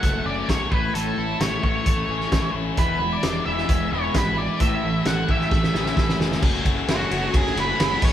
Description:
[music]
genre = indie rock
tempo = 131 BPM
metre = 4/4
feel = straight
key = unclear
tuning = A4 = 440 Hz
[part]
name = octave-fuzz lead guitar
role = melody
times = 0.0-8.1 s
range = F#4 to F#5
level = -26 LUFS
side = right 1 dB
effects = distortion
[part]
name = biting overdriven guitar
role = riff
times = 0.0-8.1 s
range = E2 to F#4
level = -26 LUFS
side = left 5 dB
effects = none
[part]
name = fuzz picked electric bass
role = bass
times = 0.0-8.1 s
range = E1 to B1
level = -29 LUFS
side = right 1 dB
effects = overdrive
[part]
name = loose indie drum kit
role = drums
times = 0.0-8.1 s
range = crash cymbal, hi-hat, kick drum, ride cymbal, snare drum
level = -23 LUFS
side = equal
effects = none
[part]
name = raw garage guitar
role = riff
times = 2.8-6.4 s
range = A2 to B3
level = -27 LUFS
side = right 2 dB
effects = overdrive
[sound]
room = moderate stone room reverb, RT60 1.4 s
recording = band playing live in one room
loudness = -20 LUFS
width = side -10 dB against mid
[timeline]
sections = 0.0-6.4 A section; 6.4-8.1 B section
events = drum fill 5.5-6.4; lead electric guitar solo 6.4-8.1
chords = 0.0 F#m; 0.7 A; 2.8 E; 4.6 A; 6.4 F#m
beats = 0.04 0.49 | 0.95 1.41 1.86 2.32 | 2.78 3.23 3.69 4.15 | 4.61 5.06 5.52 5.97 | 6.43 6.89 7.34 7.80

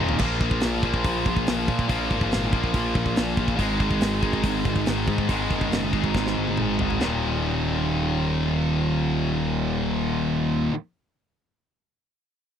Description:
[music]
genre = heavy metal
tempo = 141 BPM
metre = 4/4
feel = straight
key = unclear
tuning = A4 = 437 Hz
[part]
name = high-gain distorted guitar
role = riff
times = 0.0-10.7 s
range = Eb2 to Bb3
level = -26 LUFS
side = left 10 dB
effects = distortion
[part]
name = scooped high-gain guitar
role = riff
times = 0.0-10.7 s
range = Eb2 to Bb3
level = -27 LUFS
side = right 11 dB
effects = distortion
[part]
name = fuzz picked electric bass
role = bass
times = 0.0-10.7 s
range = Eb1 to Bb2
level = -28 LUFS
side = equal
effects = overdrive
[part]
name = tight metal drum kit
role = drums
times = 0.1-7.1 s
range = crash cymbal, hi-hat, kick drum, snare drum, toms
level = -26 LUFS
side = equal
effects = none
[sound]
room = little or no reverb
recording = dry, close 1970s-style studio recording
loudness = -21 LUFS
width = side -8 dB against mid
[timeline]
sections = 0.2-7.0 A section; 7.0-10.4 B section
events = drum fill 0.0, 6.2-7.0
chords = 0.2 Bb5; 3.6 Ab5; 7.0 Eb5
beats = | 0.20 0.62 1.04 1.47 | 1.89 2.32 2.74 3.17 | 3.60 4.02 4.45 4.87 | 5.30 5.72 6.15 6.58 | 7.00 7.43 7.86 8.28 | 8.71 9.14 9.56 9.99

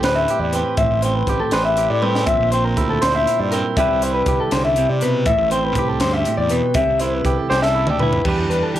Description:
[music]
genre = math rock and midwest emo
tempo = 80 BPM (dotted quarters)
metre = 6/8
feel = straight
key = unclear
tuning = A4 = 441 Hz
[part]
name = clean electric guitar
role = accompaniment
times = 0.0-8.8 s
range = G2 to C5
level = -21 LUFS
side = right 5 dB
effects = cassette tape
[part]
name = electric guitar through a small old amp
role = arpeggios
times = 0.0-8.8 s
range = G4 to E5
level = -19 LUFS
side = left 3 dB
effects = cassette tape
[part]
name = fuzz fingered electric bass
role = bass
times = 0.0-8.8 s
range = A1 to E3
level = -24 LUFS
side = equal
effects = overdrive
[part]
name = crisp fusion drum kit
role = drums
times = 0.0-8.8 s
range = crash cymbal, hi-hat, kick drum, snare drum, toms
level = -24 LUFS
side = equal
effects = cassette tape
[sound]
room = studio ambience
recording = home recording on cassette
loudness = -16 LUFS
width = side -12 dB against mid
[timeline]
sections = 0.0-8.3 A section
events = drum fill 2.0, 7.5-8.3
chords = 0.0 Am7; 2.3 Bbadd9(#11); 3.8 Cmaj9; 5.3 Am7; 6.8 C69; 8.3 Em7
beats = 0.03 | 0.78 1.53 | 2.27 3.02 | 3.77 4.51 | 5.26 6.01 | 6.76 7.50 | 8.25

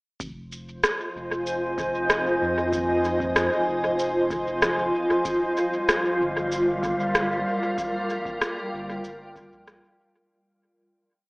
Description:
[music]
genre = ambient dub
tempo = 95 BPM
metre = 4/4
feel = straight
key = F minor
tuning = A4 = 440 Hz
[part]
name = granular cloud pad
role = sustained chords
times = 1.0-10.3 s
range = G3 to Ab5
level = -24 LUFS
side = equal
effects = built-in reverb
[part]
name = warm sub bass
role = bass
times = 0.2-9.8 s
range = F1 to F2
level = -36 LUFS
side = equal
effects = none
[part]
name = electronic kick drum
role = drums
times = 0.2-10.0 s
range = none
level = -41 LUFS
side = equal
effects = overdrive
[part]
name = electronic shaker and rim click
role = drums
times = 0.2-9.8 s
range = none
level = -25 LUFS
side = equal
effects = dub echo
[part]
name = wind-like tuned noise texture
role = texture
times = 5.8-10.3 s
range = F4 to F5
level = -31 LUFS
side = equal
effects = built-in reverb
[sound]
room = moderate echo chamber reverb, RT60 2.4 s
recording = AM radio sound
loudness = -22 LUFS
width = side -31 dB against mid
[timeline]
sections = 0.2-10.3 groove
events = fade-out 6.9-10.3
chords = 0.2 Fm7; 5.3 Gm7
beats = | 0.20 0.83 1.47 2.10 | 2.73 3.36 3.99 4.62 | 5.26 5.89 6.52 7.15 | 7.78 8.41 9.04 9.68

